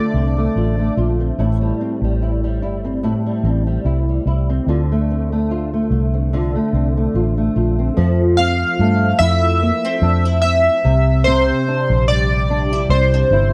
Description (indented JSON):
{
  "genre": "indie pop, bedroom pop",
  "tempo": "73 BPM",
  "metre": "4/4",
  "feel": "swing 55% on 16ths",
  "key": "F major",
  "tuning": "A4 = 440 Hz",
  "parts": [
    { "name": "chorused retro synth keys", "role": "melody", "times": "0.0-0.9, 8.4-13.5 s", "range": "C5 to F5", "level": "-20 LUFS", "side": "equal", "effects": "lush chorus, slapback echo" },
    { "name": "flamenco guitar", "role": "accompaniment", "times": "0.0-13.5 s", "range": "A2 to F4", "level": "-22 LUFS", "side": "equal", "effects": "ensemble chorus, warbly pitch drift" },
    { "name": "vintage muted fingered electric bass", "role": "bass", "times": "0.1-13.5 s", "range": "G1 to G2", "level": "-20 LUFS", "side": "equal", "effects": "none" }
  ],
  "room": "studio ambience",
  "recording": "dry, close 1970s-style studio recording",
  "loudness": "-17 LUFS",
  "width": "mono",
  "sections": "0.0-8.0 A section; 8.0-13.5 B section",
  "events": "none",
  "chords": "0.0 Dm7; 1.4 Am7; 4.7 Dm7; 8.0 Fmaj7; 10.8 Cadd9"
}